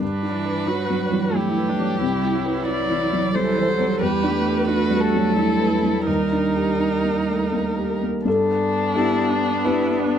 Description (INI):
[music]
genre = neoclassical piano and strings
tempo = 81-92 BPM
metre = 3/4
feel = rubato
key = G major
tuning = A4 = 441 Hz
[part]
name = warm violin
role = melody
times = 0.0-10.2 s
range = D4 to D5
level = -25 LUFS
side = left 3 dB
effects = none
[part]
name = rich cello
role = second line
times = 0.0-10.2 s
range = E3 to E4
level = -25 LUFS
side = right 5 dB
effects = none
[part]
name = felt-muted upright piano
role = accompaniment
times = 0.0-10.2 s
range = C2 to C5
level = -22 LUFS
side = left 2 dB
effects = none
[part]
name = warm viola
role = accompaniment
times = 0.0-10.2 s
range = B3 to A4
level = -27 LUFS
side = right 4 dB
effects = none
[sound]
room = light reverb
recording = close, detailed microphones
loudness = -18 LUFS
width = side -8 dB against mid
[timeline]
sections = 0.0-8.3 A section; 8.3-10.2 B section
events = none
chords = 0.0 Gmaj7; 2.0 Cmaj7; 4.0 Em7; 6.1 Ebmaj7; 8.3 G